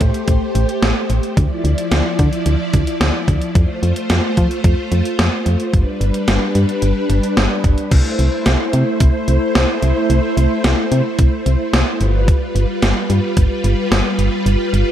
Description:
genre	synth-pop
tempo	110 BPM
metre	4/4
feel	straight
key	unclear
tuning	A4 = 440 Hz
part	string machine, violas	sustained chords	0.0-14.9 s	F3 to D5	-19 LUFS	equal	ensemble chorus
part	solid FM bass	bass	0.0-14.8 s	G1 to F3	-16 LUFS	equal	none
part	gated 80s digital drum machine	drums	0.0-14.9 s	crash cymbal, hi-hat, kick drum, snare drum	-18 LUFS	equal	gated reverb, gated reverb snare
room	light reverb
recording	none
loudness	-14 LUFS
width	side -11 dB against mid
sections	0.0-7.9 A section; 7.9-14.9 B section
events	none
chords	0.0 Am7; 1.4 Dmadd9; 3.6 F; 5.7 G; 7.9 C6; 12.0 G7

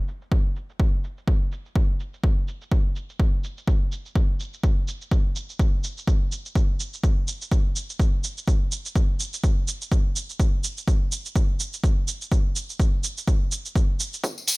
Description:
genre	house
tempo	125 BPM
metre	4/4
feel	swing 57% on 16ths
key	none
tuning	none
part	electronic shaker and hi-hat	drums	0.1-14.6 s	none	-30 LUFS	right 3 dB	low-pass filter on hats, studio reverb, low-pass filter on perc, low-pass filter on snare, low-pass filter on cymbals
part	electronic kick drum	drums	0.3-14.3 s	none	-21 LUFS	equal	high-pass filter on kick, studio reverb
part	tambourine	percussion	14.2-14.6 s	none	-25 LUFS	left 3 dB	none
room	digital ambience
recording	none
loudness	-22 LUFS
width	side -25 dB against mid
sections	0.0-14.2 A section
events	none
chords	none

